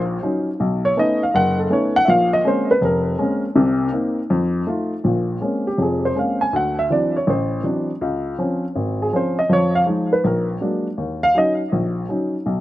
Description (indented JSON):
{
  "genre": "solo jazz",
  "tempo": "162 BPM",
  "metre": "4/4",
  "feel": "swing 65% on 8ths",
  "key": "Bb minor",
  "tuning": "A4 = 442 Hz",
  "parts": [
    { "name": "dark upright piano", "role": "solo", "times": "0.0-12.6 s", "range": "F1 to Ab5", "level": "-17 LUFS", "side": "equal", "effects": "slapback echo" }
  ],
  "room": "light reverb",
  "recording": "recorded outdoors, with no room sound",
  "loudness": "-17 LUFS",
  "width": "side -15 dB against mid",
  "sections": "0.0-5.0 A section; 5.0-12.6 A section",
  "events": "upright piano solo 0.0-5.0, 5.0-12.6",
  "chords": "0.0 Ebm7; 0.6 B9; 2.1 Bbm9; 3.6 Cm7; 4.3 F7; 5.0 Bbm9; 6.5 D9; 8.0 Dbmaj7; 9.5 Fm7b5; 10.2 Bb7b13; 11.0 Ebm7"
}